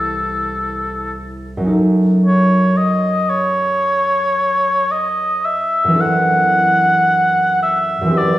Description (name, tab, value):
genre	classical, impressionist duo for oboe and harp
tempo	56 BPM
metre	4/4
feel	rubato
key	unclear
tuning	A4 = 440 Hz
part	warm oboe	melody	0.0-8.4 s	A4 to F#5	-15 LUFS	equal	none
part	concert harp	accompaniment	0.0-8.4 s	C2 to B4	-18 LUFS	equal	none
room	wet recital hall reverb, RT60 1.7 s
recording	heard from further back in the room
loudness	-13 LUFS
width	side -15 dB against mid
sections	0.0-8.4 A section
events	none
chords	0.0 C6; 1.7 F#m6; 6.0 D9/F#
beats	0.64 | 1.71 2.78 3.84 4.92 | 6.00 7.08 8.16